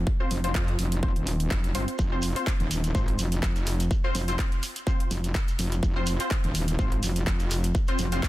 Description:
bass house; 125 BPM; 4/4; swing 55% on 16ths; F minor; A4 = 440 Hz
orchestra-hit-like synth stab; stabs; 0.0-8.2 s; C4 to C5; -33 LUFS; left 1 dB; built-in reverb, sidechain pumping, tape echo
metallic wobble bass; bass; 0.0-8.2 s; Eb1 to F2; -27 LUFS; equal; distortion, chorus, tube saturation, sidechain pumping
electronic kick drum; drums; 0.1-8.3 s; -26 LUFS; equal; overdrive, small room ambience
big-room dance drum kit; drums; 0.3-8.3 s; handclaps, hi-hat; -35 LUFS; equal; overdrive, small room ambience
shekere; percussion; 2.0-8.3 s; -39 LUFS; right 1 dB
little or no reverb; dense, heavily limited modern master; -24 LUFS; side -16 dB against mid
0.0-8.3 A section
0.0 F5

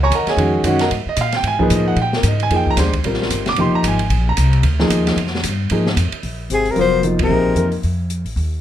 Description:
modal jazz; 225 BPM; 4/4; swing 58% on 8ths; A4 = 440 Hz
warm concert grand piano; accompaniment; 0.0-7.7 s; D#3 to D6; -18 LUFS; equal
upright bass; bass; 0.0-8.6 s; E#1 to A#2; -19 LUFS; equal
open jazz drum kit; drums; 0.1-8.4 s; hi-hat, kick drum, ride cymbal, snare drum; -24 LUFS; right 1 dB
breathy soprano saxophone; melody; 6.5-7.7 s; Ab4 to C5; -18 LUFS; left 3 dB
mellow tenor saxophone; second line; 6.5-7.7 s; C3 to F3; -21 LUFS; left 7 dB
moderate studio reverb, RT60 0.6 s; -15 LUFS; side -11 dB against mid
0.0-6.2 A section; 6.2-8.6 B section
band accent 7.2
0.0 G#9sus4; 2.0 A#9sus4; 6.2 Bb9sus4

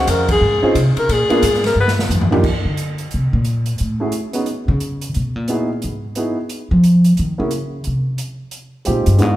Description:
jazz, small-group swing and bop; 178 BPM; 4/4; swing 63% on 8ths; A4 = 440 Hz
breathy alto saxophone; melody; 0.0-1.9 s; Gb4 to Cb5; -17 LUFS; left 2 dB
warm grand piano; accompaniment; 0.0-9.4 s; Ab3 to F5; -20 LUFS; right 2 dB
upright bass; bass; 0.0-9.4 s; F2 to F3; -17 LUFS; equal
open jazz drum kit; drums; 0.1-9.3 s; crash cymbal, hi-hat, kick drum, ride cymbal, snare drum, toms; -23 LUFS; equal
moderate recital hall reverb, RT60 1.6 s; recorded in a church or concert hall; -15 LUFS; side -14 dB against mid
0.0-2.4 A section; 2.4-9.4 A section
alto saxophone solo 0.0-2.4; drum fill 1.8-2.4; upright bass solo 2.4-9.4
0.0 Dbmaj9; 1.1 Bb7; 2.4 Bbadd9; 3.8 Gbm7; 4.5 N.C.; 5.1 Emaj7; 6.5 N.C.; 7.2 Gb9; 7.8 Fm7

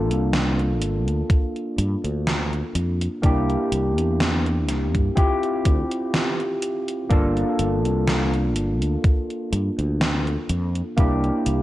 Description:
vaporwave; 62 BPM; 4/4; swing 54% on 16ths; G dorian; A4 = 441 Hz
overdriven tine electric piano; accompaniment; 0.0-11.6 s; Bb3 to A4; -24 LUFS; equal; analog chorus, analog delay
sustaining fretless electric bass; bass; 0.0-11.6 s; G1 to G2; -23 LUFS; equal
gated 80s digital drum machine; drums; 0.1-11.6 s; hi-hat, snare drum; -26 LUFS; equal; gated reverb, gated reverb snare, overdrive
electronic kick drum; drums; 1.3-11.2 s; -19 LUFS; equal; overdrive
little or no reverb; -20 LUFS; side -15 dB against mid
0.0-11.6 A section
0.0 Gm7; 3.2 C9; 5.2 Dm11 (rootless); 7.1 Gm7; 11.0 C9

